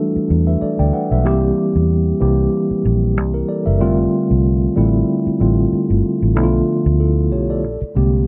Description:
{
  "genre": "R&B, neo-soul",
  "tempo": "94 BPM",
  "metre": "4/4",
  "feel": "swing 55% on 16ths",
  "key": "unclear",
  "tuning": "A4 = 440 Hz",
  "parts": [
    { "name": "mellow tine electric piano", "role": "accompaniment", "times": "0.0-8.3 s", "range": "D3 to G5", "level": "-19 LUFS", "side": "equal", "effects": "none" },
    { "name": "vintage muted fingered electric bass", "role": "bass", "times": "0.2-8.3 s", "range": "F1 to E2", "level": "-19 LUFS", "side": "equal", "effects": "none" }
  ],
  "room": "light reverb, digital ambience",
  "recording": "none",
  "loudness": "-17 LUFS",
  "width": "mono",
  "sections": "0.0-8.3 A section",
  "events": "tine electric piano fill 7.9-8.3",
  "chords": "0.0 Em11; 1.2 C7; 3.8 F69; 6.3 Bm7b5; 7.6 A#13"
}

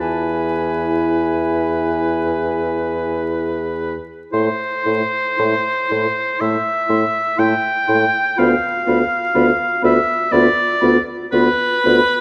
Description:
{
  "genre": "classical, slow romantic movement for wind quintet",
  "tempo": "55-62 BPM",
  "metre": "4/4",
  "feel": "rubato",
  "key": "A minor",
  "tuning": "A4 = 440 Hz",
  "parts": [
    { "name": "concert flute", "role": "melody", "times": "0.0-12.0 s", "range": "G#5 to C6", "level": "-31 LUFS", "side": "equal", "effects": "none" },
    { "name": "clear oboe", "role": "second line", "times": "0.0-12.2 s", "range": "B4 to G5", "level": "-21 LUFS", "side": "equal", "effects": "none" },
    { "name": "mellow clarinet", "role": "accompaniment", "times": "0.0-12.0 s", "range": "E4 to F4", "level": "-28 LUFS", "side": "equal", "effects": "none" },
    { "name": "warm French horn", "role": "accompaniment", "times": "0.0-12.0 s", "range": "A3 to E4", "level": "-26 LUFS", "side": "equal", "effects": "none" },
    { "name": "mellow bassoon", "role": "bass", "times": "0.0-12.0 s", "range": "D2 to A2", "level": "-23 LUFS", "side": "equal", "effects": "none" }
  ],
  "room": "moderate concert hall reverb, RT60 2.3 s",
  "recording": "vinyl crackle",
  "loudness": "-18 LUFS",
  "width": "mono",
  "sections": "0.0-4.3 A section; 4.3-12.2 B section",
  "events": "none",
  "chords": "0.0 E; 4.3 Am; 8.4 Bdim/D"
}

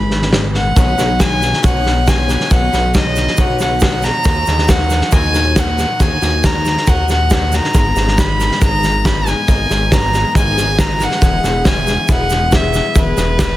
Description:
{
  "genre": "indie folk with a building arrangement",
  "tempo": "138 BPM",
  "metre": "4/4",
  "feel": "straight",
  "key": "B major",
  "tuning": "A4 = 437 Hz",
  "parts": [
    { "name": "warm fiddle", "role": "melody", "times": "0.0-13.6 s", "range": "B4 to B5", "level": "-18 LUFS", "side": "equal", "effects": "digital delay" },
    { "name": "fingerpicked steel-string acoustic guitar", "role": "accompaniment", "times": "0.0-13.6 s", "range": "G#2 to B4", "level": "-24 LUFS", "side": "left 4 dB", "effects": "none" },
    { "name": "chorused synth bass", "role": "bass", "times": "0.0-13.6 s", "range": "E1 to D#2", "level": "-18 LUFS", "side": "equal", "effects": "none" },
    { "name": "loose indie drum kit", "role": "drums", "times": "0.1-13.5 s", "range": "kick drum, snare drum", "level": "-15 LUFS", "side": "equal", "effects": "none" },
    { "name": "picked twelve-string acoustic guitar", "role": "accompaniment", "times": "0.8-13.6 s", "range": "G#2 to B4", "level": "-26 LUFS", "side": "left 6 dB", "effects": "none" },
    { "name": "egg shaker", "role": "percussion", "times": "0.8-13.5 s", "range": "none", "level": "-30 LUFS", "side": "right 15 dB", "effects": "none" }
  ],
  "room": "light reverb, small room ambience",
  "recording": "dense, heavily limited modern master",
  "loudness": "-12 LUFS",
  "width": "side -15 dB against mid",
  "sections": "0.8-13.6 A section",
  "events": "none",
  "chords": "0.0 G#m; 0.8 Badd9; 4.3 D#m; 7.7 G#madd9; 11.2 E"
}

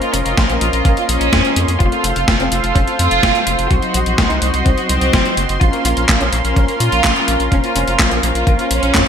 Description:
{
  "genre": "italo disco",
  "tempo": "126 BPM",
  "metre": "4/4",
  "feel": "straight",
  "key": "Bb harmonic minor",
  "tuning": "A4 = 440 Hz",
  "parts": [
    { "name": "rich studio violin section", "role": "melody", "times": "0.0-9.1 s", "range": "Bb3 to Gb4", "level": "-19 LUFS", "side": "right 1 dB", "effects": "digital delay" },
    { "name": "warm analog pad", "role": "sustained chords", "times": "0.0-9.1 s", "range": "Db4 to C6", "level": "-21 LUFS", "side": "right 2 dB", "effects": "chorus, tremolo" },
    { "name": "mellow synth brass", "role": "stabs", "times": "0.0-9.1 s", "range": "Gb3 to Db5", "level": "-24 LUFS", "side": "left 4 dB", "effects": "chorus" },
    { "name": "clean 12-bit digital drum machine", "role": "drums", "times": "0.0-9.0 s", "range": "handclaps, hi-hat, snare drum", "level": "-18 LUFS", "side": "left 1 dB", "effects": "gated reverb" },
    { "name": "round analog bass", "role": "bass", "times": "0.1-9.0 s", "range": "F1 to Bb2", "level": "-19 LUFS", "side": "equal", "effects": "tube saturation" },
    { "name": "electronic kick drum", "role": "drums", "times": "0.4-9.0 s", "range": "none", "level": "-16 LUFS", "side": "equal", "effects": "none" }
  ],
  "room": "moderate plate reverb, RT60 1.4 s",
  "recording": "bright 1980s-style digital production",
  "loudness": "-12 LUFS",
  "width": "side -8 dB against mid",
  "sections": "0.0-9.1 A section",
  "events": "none",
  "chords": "0.0 Bbmadd9; 1.8 F; 3.7 Cdim; 5.6 Bbmadd9"
}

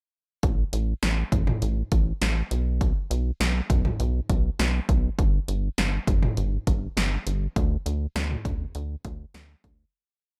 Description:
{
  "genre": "synth-pop",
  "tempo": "101 BPM",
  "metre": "4/4",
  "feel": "straight",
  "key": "B minor",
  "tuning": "A4 = 440 Hz",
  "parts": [
    { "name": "rubbery square bass", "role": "bass", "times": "0.4-9.8 s", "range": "G1 to D2", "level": "-28 LUFS", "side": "equal", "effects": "none" },
    { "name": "punchy analog drum machine", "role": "drums", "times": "0.4-9.8 s", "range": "hi-hat, kick drum, snare drum, toms", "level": "-28 LUFS", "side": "equal", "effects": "none" }
  ],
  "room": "little or no reverb",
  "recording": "none",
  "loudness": "-26 LUFS",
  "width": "mono",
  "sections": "0.4-9.9 verse",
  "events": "fade-out 7.6-9.9",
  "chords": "none"
}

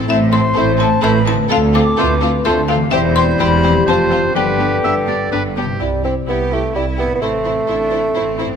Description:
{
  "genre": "cinematic, playful, whimsical film cue",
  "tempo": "127 BPM",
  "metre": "3/4",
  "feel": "straight",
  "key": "C major",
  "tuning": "A4 = 439 Hz",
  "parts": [
    { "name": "rich studio violin section", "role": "melody", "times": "0.0-8.5 s", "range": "G4 to C5", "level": "-26 LUFS", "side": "left 4 dB", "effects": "none" },
    { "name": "rich studio violin section", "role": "second line", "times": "0.0-8.5 s", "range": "D4 to G4", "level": "-26 LUFS", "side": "left 4 dB", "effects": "none" },
    { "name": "rich studio viola section", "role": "accompaniment", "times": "0.0-8.5 s", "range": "B3 to E4", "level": "-26 LUFS", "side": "right 2 dB", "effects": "none" },
    { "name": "dark French horn section", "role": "sustained chords", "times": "0.0-5.5 s", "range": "G4 to C5", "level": "-21 LUFS", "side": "left 4 dB", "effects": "none" },
    { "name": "concert harp", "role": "arpeggios", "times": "0.0-8.6 s", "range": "G2 to C5", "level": "-23 LUFS", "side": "left 10 dB", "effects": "none" },
    { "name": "dark studio double bass section", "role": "bass", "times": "0.0-8.6 s", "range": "E1 to D2", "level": "-21 LUFS", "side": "right 5 dB", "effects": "none" },
    { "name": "warm studio cello section", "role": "bass", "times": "0.0-8.6 s", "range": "D2 to G4", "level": "-22 LUFS", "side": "right 3 dB", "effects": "none" },
    { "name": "buzzing marimba with hard mallets", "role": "melody", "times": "0.1-5.5 s", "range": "E5 to D6", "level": "-22 LUFS", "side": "left 7 dB", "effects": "none" },
    { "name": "silver concert flute", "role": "second line", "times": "0.1-5.5 s", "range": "E5 to D6", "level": "-22 LUFS", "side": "left 3 dB", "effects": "none" },
    { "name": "bright oboe", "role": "second line", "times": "0.6-5.8 s", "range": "G4 to E5", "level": "-24 LUFS", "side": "right 2 dB", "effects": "none" },
    { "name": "warm clarinet", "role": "second line", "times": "0.6-5.6 s", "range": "E4 to G4", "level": "-26 LUFS", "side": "equal", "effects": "none" },
    { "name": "mellow bassoon", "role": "accompaniment", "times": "0.6-8.6 s", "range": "D3 to C4", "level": "-21 LUFS", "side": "right 3 dB", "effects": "none" }
  ],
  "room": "moderate scoring stage reverb, RT60 1.9 s",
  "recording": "none",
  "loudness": "-13 LUFS",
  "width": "side -7 dB against mid",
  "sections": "0.0-5.8 A section; 5.8-8.6 B section",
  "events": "none",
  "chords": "0.0 Am; 1.5 Dm7; 2.9 C/E; 3.9 F; 4.4 G; 5.8 C; 7.2 Am"
}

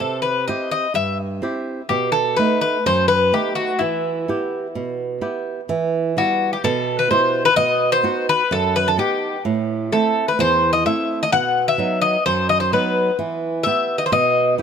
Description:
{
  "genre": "greek folk, Greek bouzouki band",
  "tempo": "128 BPM",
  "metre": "4/4",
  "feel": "straight",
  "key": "E harmonic minor",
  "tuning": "A4 = 440 Hz",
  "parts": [
    { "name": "Greek bouzouki", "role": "melody", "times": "0.0-14.5 s", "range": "E4 to F#5", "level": "-18 LUFS", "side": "left 3 dB", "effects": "none" },
    { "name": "flamenco guitar", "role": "accompaniment", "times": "0.0-14.6 s", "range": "E2 to F#5", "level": "-22 LUFS", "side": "right 4 dB", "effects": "none" }
  ],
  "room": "light reverb",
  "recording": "close, detailed microphones",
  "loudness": "-17 LUFS",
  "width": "side -7 dB against mid",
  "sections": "0.0-5.7 A section; 5.7-14.6 B section",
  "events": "speeding up 0.0-14.6",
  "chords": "0.0 C; 1.9 B7; 3.8 Em; 7.6 B; 9.5 Am; 11.3 B; 13.2 Em"
}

